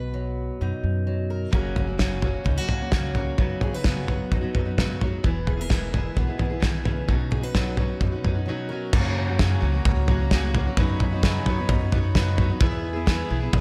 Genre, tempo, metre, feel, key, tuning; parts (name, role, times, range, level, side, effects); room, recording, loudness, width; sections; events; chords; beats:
indie folk with a building arrangement; 130 BPM; 4/4; straight; B major; A4 = 441 Hz
fingerpicked steel-string acoustic guitar; accompaniment; 0.0-10.8 s; B2 to B4; -34 LUFS; equal
upright bass; bass; 0.0-13.6 s; E1 to F#2; -30 LUFS; equal
picked steel-string acoustic guitar; accompaniment; 1.5-13.6 s; F#2 to G#4; -32 LUFS; equal
cloth-damped thuddy drum kit; drums; 1.5-13.6 s; crash cymbal, kick drum, snare drum, toms; -26 LUFS; equal
pedal harmonium; sustained chords; 8.9-13.6 s; D#4 to B5; -36 LUFS; equal
light reverb, studio reverb; -24 LUFS; mono
0.0-8.9 A section; 8.9-13.6 B section
break 8.5-8.9
0.0 B; 1.5 F#; 3.4 Badd9/F#; 5.2 E; 7.1 Badd9; 8.9 F#; 10.8 Badd9/F#; 12.6 E
0.14 0.60 1.07 | 1.53 2.00 2.46 2.92 | 3.39 3.85 4.31 4.78 | 5.24 5.70 6.17 6.63 | 7.09 7.55 8.02 8.48 | 8.94 9.40 9.86 10.32 | 10.78 11.24 11.70 12.16 | 12.62 13.08 13.54